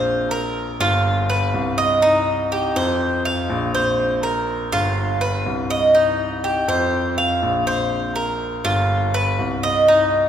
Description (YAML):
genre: latin, Cuban son and guajira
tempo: 122 BPM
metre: 4/4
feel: straight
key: unclear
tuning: A4 = 440 Hz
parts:
  - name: Cuban tres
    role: arpeggios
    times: 0.0-10.3 s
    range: Eb4 to F5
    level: -18 LUFS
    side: right 1 dB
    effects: none
  - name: dark grand piano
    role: bass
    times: 0.0-10.3 s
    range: G1 to F2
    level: -23 LUFS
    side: left 1 dB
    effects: none
room: wet church reverb, RT60 3.7 s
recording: recorded in a church or concert hall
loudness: -17 LUFS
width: side -9 dB against mid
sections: 0.0-10.3 A section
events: none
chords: 0.1 Bbsus2; 1.1 G7; 2.0 Cm; 3.0 F5; 4.0 Bbsus2; 5.0 G7; 6.0 Cm; 6.9 F5; 7.9 Bbsus2; 8.9 G7